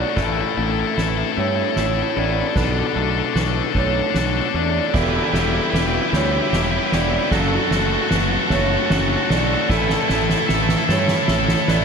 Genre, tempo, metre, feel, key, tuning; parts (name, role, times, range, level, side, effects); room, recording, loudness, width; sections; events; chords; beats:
post-rock; 50 BPM (dotted quarters); 6/8; straight; A4 = 440 Hz
pedal steel guitar; sustained chords; 0.0-11.8 s; C#3 to B4; -33 LUFS; right 2 dB
twelve-string electric guitar; arpeggios; 0.0-11.8 s; E2 to A4; -28 LUFS; left 2 dB; spring reverb, tape echo
vibraphone with medium mallets; arpeggios; 0.0-11.8 s; A4 to D5; -26 LUFS; right 5 dB; tape echo
distorted electric guitar; riff; 0.0-11.8 s; D4 to A4; -23 LUFS; left 12 dB; overdrive
fuzz fingered electric bass; bass; 0.0-11.8 s; E1 to G2; -24 LUFS; right 1 dB; overdrive
soft-mallet drum kit; drums; 0.2-11.8 s; crash cymbal, kick drum, ride cymbal, snare drum; -23 LUFS; left 1 dB
cranked stack guitar; riff; 4.9-11.8 s; E4 to B4; -24 LUFS; right 14 dB; overdrive
light reverb, studio reverb; -17 LUFS; side -6 dB against mid
0.0-11.8 A section
build-up 0.0-11.8; drum fill 0.0-11.8
0.2 Asus2; 2.6 Bm7; 4.9 Em; 7.3 F#m; 9.7 Asus2
| 0.17 1.36 | 2.56 3.75 | 4.94 6.13 | 7.32 8.51 | 9.70 10.88